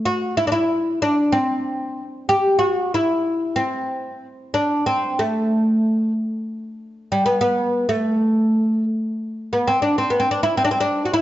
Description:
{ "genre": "turkish", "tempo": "188 BPM (eighths)", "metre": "7/8", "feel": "straight", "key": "A makam huseyni", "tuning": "A4 = 440 Hz", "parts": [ { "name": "oud", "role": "solo", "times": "0.1-11.2 s", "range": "G3 to G4", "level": "-18 LUFS", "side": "equal", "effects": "none" } ], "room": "moderate recital hall reverb, RT60 1.7 s", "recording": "dark, warm production, nothing above 7.8 kHz", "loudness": "-18 LUFS", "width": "side -14 dB against mid", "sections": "0.0-6.8 A section; 6.8-11.2 B section", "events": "none", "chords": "none", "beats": "| 0.08 0.40 0.72 1.04 1.36 1.68 2.00 | 2.32 2.64 2.96 3.28 3.60 3.92 4.24 | 4.56 4.88 5.20 5.52 5.84 6.16 6.48 | 6.80 7.12 7.44 7.76 8.08 8.40 8.72 | 9.04 9.36 9.68 10.00 10.32 10.64 10.96" }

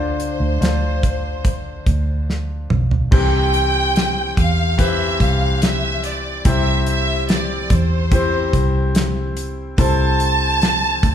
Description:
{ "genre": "pop ballad", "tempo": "72 BPM", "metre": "4/4", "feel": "straight", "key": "C major", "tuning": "A4 = 442 Hz", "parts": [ { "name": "warm studio violin section", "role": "melody", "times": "0.0-11.1 s", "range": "C5 to A5", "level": "-22 LUFS", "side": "right 2 dB", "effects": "none" }, { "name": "clear baby grand piano", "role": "accompaniment", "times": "0.0-11.1 s", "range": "C3 to C5", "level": "-24 LUFS", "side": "left 3 dB", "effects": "none" }, { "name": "vintage muted fingered electric bass", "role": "bass", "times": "0.0-11.1 s", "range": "B1 to E2", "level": "-20 LUFS", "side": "equal", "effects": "none" }, { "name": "damped 70s drum kit", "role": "drums", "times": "0.2-11.1 s", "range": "crash cymbal, hi-hat, kick drum, snare drum, toms", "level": "-19 LUFS", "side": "equal", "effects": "none" } ], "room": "moderate large studio reverb, RT60 1.1 s", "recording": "band playing live in one room", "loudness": "-16 LUFS", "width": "side -9 dB against mid", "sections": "0.0-3.1 A section; 3.1-11.1 B section", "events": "drum fill 2.3-3.1", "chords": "0.0 Dm7; 3.1 C; 9.8 Am/C", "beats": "0.62 1.45 2.28 | 3.12 3.95 4.78 5.62 | 6.45 7.28 8.12 8.95 | 9.78 10.62" }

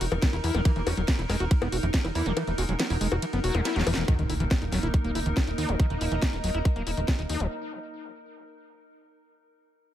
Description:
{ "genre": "psychedelic trance", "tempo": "140 BPM", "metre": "4/4", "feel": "straight", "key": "Eb phrygian", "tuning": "A4 = 440 Hz", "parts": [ { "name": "evolving wavetable pad", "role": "sustained chords", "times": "0.0-7.6 s", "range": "Eb4 to Bb4", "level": "-35 LUFS", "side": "equal", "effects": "chorus, built-in reverb, sidechain pumping" }, { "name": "screaming distorted acid line", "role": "riff", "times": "0.0-7.5 s", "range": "Db3 to Gb4", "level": "-32 LUFS", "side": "moving between left 5 dB and right 4 dB", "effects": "distortion, chorus, auto-pan, cassette tape, sidechain pumping, tape echo" }, { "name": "plucky analog bass", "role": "bass", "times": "0.0-7.5 s", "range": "Eb1 to E2", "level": "-29 LUFS", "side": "equal", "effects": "none" }, { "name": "garage drum kit", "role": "drums", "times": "0.0-7.5 s", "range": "bongos, hi-hat, ride cymbal, snare drum", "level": "-32 LUFS", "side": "left 2 dB", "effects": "none" }, { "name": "electronic kick drum", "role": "drums", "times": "0.2-7.2 s", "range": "none", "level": "-23 LUFS", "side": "equal", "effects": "none" }, { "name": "metallic wobble bass", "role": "second line", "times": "0.7-3.9 s", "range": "Gb3 to Db4", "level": "-42 LUFS", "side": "right 3 dB", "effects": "none" }, { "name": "impact", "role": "sound effects", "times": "4.1-5.8 s", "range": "none", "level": "-34 LUFS", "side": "equal", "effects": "none" }, { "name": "airy breathy pad", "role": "texture", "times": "4.4-7.5 s", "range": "Bb3 to Bb5", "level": "-36 LUFS", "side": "right 1 dB", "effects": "chorus, sidechain pumping" } ], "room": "little or no reverb", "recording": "none", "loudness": "-24 LUFS", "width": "side -12 dB against mid", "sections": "0.0-4.1 A section; 4.1-7.5 B section", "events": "drop 0.0-4.1; kick drops out 2.4-4.1; drum fill 3.7-4.1; impact 4.1-5.8; filter sweep on acid bass 4.1-7.5", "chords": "0.0 E5; 4.1 Eb5", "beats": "0.22 | 0.65 1.08 1.51 1.94 | 2.37 2.79 3.22 3.65 | 4.08 4.51 4.94 5.37 | 5.79 6.22 6.65 7.08" }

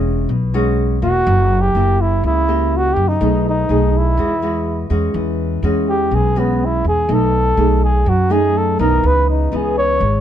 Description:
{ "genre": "bossa nova", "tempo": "124 BPM", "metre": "4/4", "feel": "straight", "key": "E major", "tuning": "A4 = 440 Hz", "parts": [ { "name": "nylon-string guitar", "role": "accompaniment", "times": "0.0-10.2 s", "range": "F#2 to G#4", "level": "-19 LUFS", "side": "left 1 dB", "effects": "none" }, { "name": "upright bass", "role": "bass", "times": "0.0-10.2 s", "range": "E1 to F#2", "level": "-18 LUFS", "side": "equal", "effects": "none" }, { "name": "breathy flugelhorn", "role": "melody", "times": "1.0-10.2 s", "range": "B3 to C#5", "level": "-17 LUFS", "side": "equal", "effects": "none" } ], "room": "little or no reverb", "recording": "dark, warm production", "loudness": "-14 LUFS", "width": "side -10 dB against mid", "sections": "0.0-5.1 A section; 5.1-10.2 B section", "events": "flugelhorn solo 5.1-10.2", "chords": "0.0 E69; 1.3 F#7b9; 3.2 B6; 4.2 Emaj9; 5.1 E69; 7.1 B6; 9.0 C#m9", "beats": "0.29 0.78 | 1.26 1.75 2.23 2.72 | 3.20 3.69 4.17 4.66 | 5.14 5.63 6.12 6.60 | 7.09 7.57 8.06 8.54 | 9.03 9.52 10.00" }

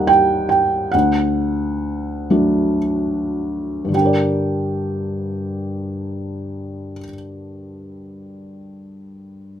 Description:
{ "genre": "classical, lyrical solo piano", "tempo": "33-48 BPM (dotted quarters)", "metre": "6/8", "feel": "rubato", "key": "G harmonic minor", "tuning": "A4 = 439 Hz", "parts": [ { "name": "felt-muted upright piano", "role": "solo", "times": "0.0-9.6 s", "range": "D2 to G5", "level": "-18 LUFS", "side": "right 1 dB", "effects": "none" } ], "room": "light reverb", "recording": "none", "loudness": "-17 LUFS", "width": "side -10 dB against mid", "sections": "0.0-3.9 A section; 3.9-7.4 B section", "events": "slowing down 0.0-3.9", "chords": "0.0 Eb; 0.9 D; 3.9 Gm", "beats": "| 0.94 2.31 | 3.94 5.69" }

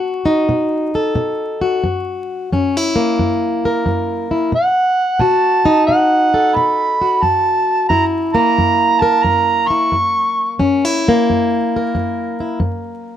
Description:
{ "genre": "acoustic country blues, solo or duo", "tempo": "89 BPM", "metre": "4/4", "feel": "swing 67% on 8ths", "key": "F# mixolydian", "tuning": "A4 = 440 Hz", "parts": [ { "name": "fingerpicked plugged-in swing-style acoustic guitar", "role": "accompaniment", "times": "0.0-13.2 s", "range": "F#2 to A#4", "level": "-16 LUFS", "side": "left 1 dB", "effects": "none" }, { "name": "overdriven harmonica", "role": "melody", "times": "4.6-10.6 s", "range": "F#5 to C#6", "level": "-14 LUFS", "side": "right 2 dB", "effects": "plate reverb" } ], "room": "moderate studio reverb, RT60 0.5 s", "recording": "dark, warm production, vinyl crackle", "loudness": "-13 LUFS", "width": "side -10 dB against mid", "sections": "0.0-13.2 A section", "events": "none", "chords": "0.0 B7; 1.8 F#7; 4.5 B7; 7.2 F#7", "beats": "0.49 1.16 | 1.84 2.51 3.19 3.86 | 4.54 5.21 5.88 6.56 | 7.23 7.91 8.58 9.25 | 9.92 10.60 11.27 11.94 | 12.61" }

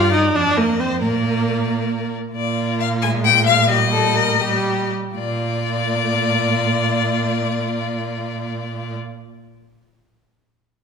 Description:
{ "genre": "quick classical-period movement for string quartet", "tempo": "78-91 BPM (dotted quarters)", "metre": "6/8", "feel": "straight", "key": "Bb major", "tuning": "A4 = 436 Hz", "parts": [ { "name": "rich violin", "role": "melody", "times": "0.0-8.9 s", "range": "D5 to Ab5", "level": "-21 LUFS", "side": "left 8 dB", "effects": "none" }, { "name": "warm violin", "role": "second line", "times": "0.0-8.9 s", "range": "F4 to F5", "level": "-27 LUFS", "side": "left 4 dB", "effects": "none" }, { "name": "warm viola", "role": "accompaniment", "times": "0.0-8.9 s", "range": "G3 to F4", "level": "-22 LUFS", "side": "right 2 dB", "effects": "none" }, { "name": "warm cello", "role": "bass", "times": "0.0-8.9 s", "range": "F2 to Bb2", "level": "-23 LUFS", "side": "right 3 dB", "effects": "none" } ], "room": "moderate recital hall reverb, RT60 1.5 s", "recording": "minimal, uncompressed stereo recording", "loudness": "-17 LUFS", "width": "side -6 dB against mid", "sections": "0.0-2.4 A section; 2.4-5.2 B section; 5.2-8.2 C section", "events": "slowing down 1.7-5.2", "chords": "0.4 Cm11/F; 1.0 Bb; 2.4 Bb7; 3.7 Eb/Bb; 5.2 Bb", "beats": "0.35 | 1.02 1.69 | 2.36 3.03 | 3.70 4.40 | 5.16 5.91 | 6.67 7.43" }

